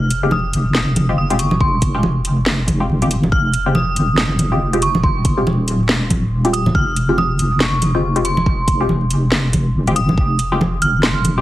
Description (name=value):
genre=deep dubstep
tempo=140 BPM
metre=4/4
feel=swing 59% on 16ths, half-time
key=F minor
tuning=A4 = 440 Hz
part: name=dark detuned synth bell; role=melody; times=0.0-11.4 s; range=C6 to F6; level=-22 LUFS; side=right 1 dB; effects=chorus, phaser, dub echo
part: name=deep soft wobble bass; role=bass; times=0.0-11.4 s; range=Eb1 to F1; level=-18 LUFS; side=equal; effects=chorus, tube saturation
part: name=garage drum kit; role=drums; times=0.1-11.3 s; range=hi-hat, snare drum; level=-19 LUFS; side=equal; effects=studio reverb
part: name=filtered dub chord stab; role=stabs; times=0.2-11.4 s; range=Ab3 to G4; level=-22 LUFS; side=left 2 dB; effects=phaser, wide subtle chorus, dub echo
part: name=congas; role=percussion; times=0.3-11.3 s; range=none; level=-21 LUFS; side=right 1 dB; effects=none
part: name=electronic kick drum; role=drums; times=1.6-10.3 s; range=none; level=-19 LUFS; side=equal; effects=studio reverb
room=light reverb, digital ambience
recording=heavily compressed radio sound, vinyl crackle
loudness=-14 LUFS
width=side -15 dB against mid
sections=0.0-11.4 A section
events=none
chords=none